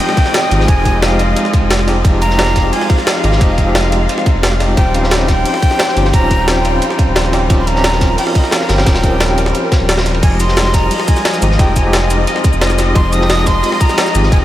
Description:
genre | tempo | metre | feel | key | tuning
liquid drum and bass | 176 BPM | 4/4 | straight | F minor | A4 = 436 Hz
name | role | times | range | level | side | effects
breathy bright jazz flute | melody | 0.0-14.4 s | Eb5 to Eb6 | -20 LUFS | equal | analog delay
tine electric piano | accompaniment | 0.0-14.4 s | F3 to G4 | -18 LUFS | left 1 dB | medium tremolo, tape echo
muted studio string section | sustained chords | 0.0-14.4 s | F3 to F5 | -20 LUFS | equal | sidechain pumping
crunchy breakbeat drum kit | drums | 0.0-14.4 s | hi-hat, ride cymbal, snare drum | -23 LUFS | equal | high-pass filter on cymbals, high-pass filter on hats, high-pass filter on snare, high-pass filter on room
jungle sampler-style drum kit | drums | 0.0-14.4 s | cabasa, crash cymbal, hi-hat, snare drum | -19 LUFS | equal | none
downlifter | sound effects | 0.0-2.0 s | none | -29 LUFS | equal | none
electronic kick drum | drums | 0.2-14.4 s | none | -12 LUFS | equal | none
saturated sub bass | bass | 0.5-14.4 s | Eb1 to Ab1 | -16 LUFS | equal | tube saturation
room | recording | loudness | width
moderate huge ambient reverb, RT60 8.3 s | dreamy mix soaked in reverb | -10 LUFS | side -13 dB against mid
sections
0.0-14.4 A section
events
none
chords
0.0 Fm9; 4.8 Eb13; 10.2 Fm9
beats
0.00 0.34 | 0.68 1.02 1.36 1.71 | 2.05 2.39 2.73 3.07 | 3.41 3.75 4.09 4.43 | 4.77 5.11 5.46 5.80 | 6.14 6.48 6.82 7.16 | 7.50 7.84 8.18 8.52 | 8.86 9.21 9.55 9.89 | 10.23 10.57 10.91 11.25 | 11.59 11.93 12.27 12.61 | 12.96 13.30 13.64 13.98 | 14.32

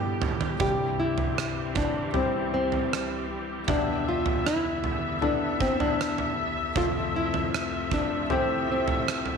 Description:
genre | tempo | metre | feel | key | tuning
pop ballad | 78 BPM | 4/4 | straight | C major | A4 = 441 Hz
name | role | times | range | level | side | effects
nylon-string guitar | melody | 0.0-9.4 s | C4 to G4 | -28 LUFS | equal | slapback echo
warm concert grand piano | accompaniment | 0.0-9.4 s | C2 to E5 | -31 LUFS | left 8 dB | none
rich studio string section | sustained chords | 0.0-9.4 s | C3 to E5 | -32 LUFS | left 1 dB | none
huge arena drum kit | drums | 0.2-9.4 s | kick drum, rim click, toms | -30 LUFS | right 5 dB | none
room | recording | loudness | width
moderate echo chamber reverb, RT60 1.8 s, small room ambience | 1960s-style stereo | -24 LUFS | side -6 dB against mid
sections
0.0-9.4 A section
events
drum fill 0.0-0.6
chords
0.0 G; 0.6 C; 3.7 Em7; 6.8 Fmaj7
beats
| 0.61 1.38 2.15 2.91 | 3.68 4.45 5.22 5.99 | 6.76 7.53 8.30 9.07

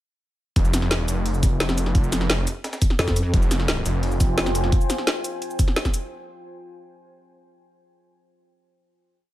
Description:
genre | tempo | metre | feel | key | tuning
dark technical drum and bass | 173 BPM | 4/4 | straight | F minor | A4 = 444 Hz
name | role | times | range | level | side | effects
wide detuned saw bass | bass | 0.6-4.7 s | F1 | -23 LUFS | equal | chorus, overdrive
breakbeat sampler-style drum kit | drums | 0.6-4.6 s | hi-hat, snare drum | -37 LUFS | equal | none
drum and bass drum kit | drums | 0.6-6.0 s | cabasa, hi-hat, snare drum | -25 LUFS | equal | overdrive, small room ambience
electronic kick drum | drums | 0.6-5.9 s | none | -20 LUFS | equal | overdrive, small room ambience
pulsing pluck wobble bass | bass | 3.0-3.3 s | F2 | -22 LUFS | equal | chorus
deep dark ambient pad | sustained chords | 3.9-6.1 s | F4 to Ab5 | -30 LUFS | equal | chorus, built-in reverb, vintage 12-bit sampler grit, sidechain pumping
room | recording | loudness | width
digital ambience | none | -20 LUFS | side -15 dB against mid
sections
0.6-6.1 drop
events
drop 0.6-6.1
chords
0.6 Fmadd9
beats
| 0.56 0.91 1.25 1.60 | 1.95 2.30 2.64 2.99 | 3.34 3.68 4.03 4.38 | 4.72 5.07 5.42 5.76

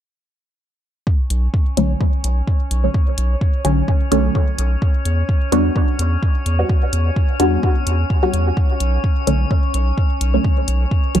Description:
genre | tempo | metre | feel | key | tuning
dub techno | 128 BPM | 4/4 | swing 55% on 16ths | B minor | A4 = 440 Hz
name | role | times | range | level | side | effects
electronic kick drum | drums | 1.1-11.0 s | none | -17 LUFS | equal | none
drifting glass-harmonics texture | texture | 1.4-11.2 s | C#4 to C#5 | -28 LUFS | left 2 dB | chorus, built-in reverb, sidechain pumping
round analog bass | bass | 1.3-11.2 s | B1 to E2 | -17 LUFS | equal | sidechain pumping
electronic hi-hat | drums | 1.3-11.2 s | none | -26 LUFS | left 2 dB | none
filtered dub chord stab | stabs | 1.8-11.2 s | D3 to F#4 | -20 LUFS | equal | phaser, cassette tape, sidechain pumping, dub echo
room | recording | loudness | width
digital ambience | dark, warm production | -15 LUFS | side -10 dB against mid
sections
1.1-11.2 A section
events
filter sweep on synth stab 1.1-11.2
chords
1.1 Bm7; 4.8 Em7; 8.6 Bm7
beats
| 1.07 1.54 2.01 2.48 | 2.94 3.41 3.88 4.35 | 4.82 5.29 5.76 6.23 | 6.70 7.16 7.63 8.10 | 8.57 9.04 9.51 9.98 | 10.45 10.91

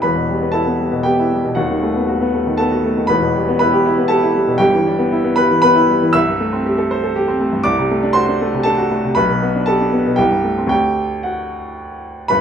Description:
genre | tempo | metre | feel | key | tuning
classical, virtuoso piano study | 118 BPM | 3/4 | rubato | E minor | A4 = 440 Hz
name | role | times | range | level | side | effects
warm baby grand piano | solo | 0.0-12.4 s | D#1 to E6 | -14 LUFS | equal | none
room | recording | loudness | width
moderate large studio reverb, RT60 0.9 s | minimal, uncompressed stereo recording | -14 LUFS | side -8 dB against mid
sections
0.0-12.3 A section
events
none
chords
0.0 Em; 1.6 B7/D#; 3.1 Em; 4.6 Em/G; 6.2 Am7/C; 7.7 D7/C; 9.2 G/B; 10.2 Am7/C; 10.7 D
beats
| 0.02 0.54 1.06 | 1.57 2.08 2.59 | 3.10 3.61 4.12 | 4.62 5.13 5.63 | 6.16 6.66 7.16 | 7.66 8.16 8.66 | 9.17 9.67 10.18 | 10.71 11.25 11.77 | 12.30

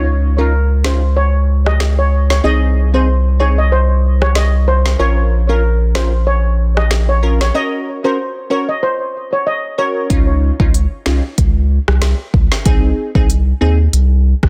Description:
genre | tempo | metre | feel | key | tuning
dancehall | 94 BPM | 4/4 | swing 56% on 16ths | unclear | A4 = 440 Hz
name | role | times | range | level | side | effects
wavetable chord stab | accompaniment | 0.0-13.8 s | C4 to Bb4 | -22 LUFS | equal | none
round analog bass | bass | 0.0-14.5 s | Ab1 to Eb2 | -15 LUFS | equal | none
steel pan | melody | 0.4-9.9 s | Bb4 to Eb5 | -21 LUFS | equal | digital delay
afro-pop drum kit | drums | 0.8-14.5 s | hi-hat, kick drum, rim click, snare drum | -18 LUFS | equal | none
room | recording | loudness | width
little or no reverb | dense, heavily limited modern master | -14 LUFS | mono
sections
0.0-10.1 A section; 10.1-14.5 B section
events
break 7.5-10.1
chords
0.0 Dbadd9; 2.4 Ab/C; 5.0 Bbm; 7.5 Gb; 10.1 Dbadd9; 12.7 Ab/C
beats
0.53 1.17 1.80 | 2.44 3.08 3.72 4.36 | 5.00 5.63 6.27 6.91 | 7.55 8.19 8.82 9.46 | 10.10 10.74 11.38 12.02 | 12.65 13.29 13.93

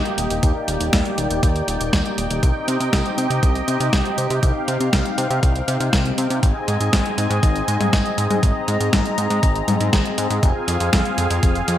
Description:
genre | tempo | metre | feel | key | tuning
italo disco | 120 BPM | 4/4 | straight | unclear | A4 = 440 Hz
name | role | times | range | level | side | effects
warm analog pad | sustained chords | 0.0-11.8 s | Bb3 to Bb5 | -22 LUFS | left 1 dB | chorus
fat analog bass | bass | 0.0-11.8 s | Eb1 to C3 | -22 LUFS | equal | none
clean 12-bit digital drum machine | drums | 0.1-11.8 s | hi-hat, snare drum, toms | -23 LUFS | equal | none
electronic kick drum | drums | 0.4-11.5 s | none | -19 LUFS | equal | none
room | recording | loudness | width
moderate plate reverb, RT60 1.1 s | bright 1980s-style digital production | -17 LUFS | side -11 dB against mid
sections
0.0-11.8 A section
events
none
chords
0.0 Eb; 2.4 Cm; 6.4 Ab; 10.4 Fm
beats
| 0.43 0.93 1.43 1.93 | 2.43 2.93 3.43 3.93 | 4.43 4.93 5.43 5.93 | 6.43 6.93 7.43 7.93 | 8.43 8.93 9.43 9.93 | 10.43 10.93 11.43

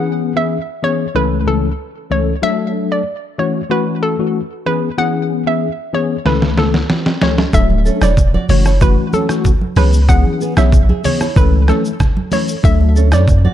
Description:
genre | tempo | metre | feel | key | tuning
afrobeats | 94 BPM | 4/4 | straight | A major | A4 = 438 Hz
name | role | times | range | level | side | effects
tine electric piano | accompaniment | 0.0-13.2 s | C#2 to A4 | -18 LUFS | left 4 dB | ensemble chorus
hollow square pluck | melody | 0.4-13.4 s | A4 to F#5 | -21 LUFS | right 1 dB | chorus, digital delay
trip hop sampler-style drum kit | drums | 6.3-13.4 s | hi-hat, kick drum, rim click, shaker, snare drum | -15 LUFS | equal | none
punchy sub bass | bass | 7.5-13.5 s | D1 to F#2 | -12 LUFS | equal | none
congas | percussion | 7.7-13.5 s | none | -22 LUFS | right 4 dB | none
flamenco guitar | riff | 7.9-13.5 s | B3 to E5 | -24 LUFS | right 10 dB | digital delay
room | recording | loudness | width
little or no reverb | dark, warm production | -12 LUFS | side -11 dB against mid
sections
0.0-13.5 A section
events
drum fill 6.3-7.5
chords
0.0 C#m7; 1.1 A/C#; 2.4 D; 3.4 F#m7; 4.7 C#m7; 6.3 A/C#; 7.5 D; 8.5 F#m7; 9.8 C#m7; 11.4 A/C#; 12.6 D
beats
0.51 1.15 1.79 | 2.43 3.06 3.70 4.34 | 4.98 5.62 6.25 6.89 | 7.53 8.17 8.81 9.45 | 10.09 10.72 11.36 12.00 | 12.64 13.28

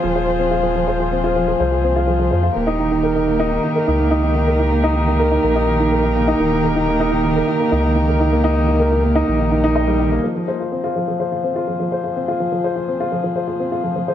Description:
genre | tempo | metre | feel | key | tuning
piano and strings electronica | 125 BPM | 4/4 | straight | unclear | A4 = 440 Hz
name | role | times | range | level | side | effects
muted string quartet | sustained chords | 0.0-14.1 s | F2 to C5 | -23 LUFS | left 1 dB | none
dark baby grand piano | riff | 0.0-14.1 s | Eb3 to Eb5 | -17 LUFS | equal | ping-pong delay
warm sub bass | bass | 0.0-10.2 s | Eb1 to F2 | -20 LUFS | equal | none
room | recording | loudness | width
moderate scoring stage reverb, RT60 1.9 s, small room ambience | none | -15 LUFS | side -10 dB against mid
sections
0.0-10.2 A section; 10.2-14.1 B section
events
none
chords
0.0 Fm; 2.6 Eb; 10.2 Fm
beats
0.16 | 0.64 1.12 1.60 2.08 | 2.56 3.04 3.52 4.00 | 4.48 4.96 5.44 5.92 | 6.40 6.88 7.36 7.84 | 8.32 8.80 9.28 9.76 | 10.24 10.72 11.20 11.68 | 12.16 12.64 13.12 13.60 | 14.08

